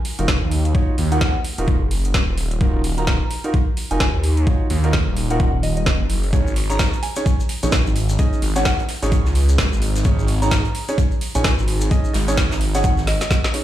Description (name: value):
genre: bass house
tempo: 129 BPM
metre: 4/4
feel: swing 59% on 16ths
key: Eb minor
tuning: A4 = 440 Hz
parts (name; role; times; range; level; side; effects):
- garage drum kit; drums; 0.0-13.6 s; hi-hat, snare drum; -25 LUFS; equal; overdrive, small room ambience
- warm grand piano; stabs; 0.2-13.6 s; Db4 to Eb5; -27 LUFS; right 2 dB; sidechain pumping, ping-pong delay
- phased detuned saw bass; bass; 0.2-13.2 s; Eb1 to Eb2; -20 LUFS; equal; phaser, overdrive, sidechain pumping
- electronic kick drum; drums; 0.3-13.4 s; none; -19 LUFS; equal; overdrive, small room ambience
- soft synth bell; melody; 1.1-13.3 s; Eb5 to Bb5; -29 LUFS; left 1 dB; chorus, phaser, ping-pong delay
- open jazz drum kit; drums; 6.3-13.6 s; hi-hat, snare drum; -33 LUFS; right 2 dB; sidechain pumping on hats, high-pass filter on hats, small room ambience, high-pass filter on snare, high-pass filter on room
- maracas; percussion; 6.3-13.5 s; none; -34 LUFS; left 4 dB; none
room: small room ambience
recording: played on a big sound system in a bare room, large studio reverb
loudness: -16 LUFS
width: side -12 dB against mid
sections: 0.0-13.6 A section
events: drum fill 13.1-13.6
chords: 0.0 Ebmadd9; 6.3 Absus4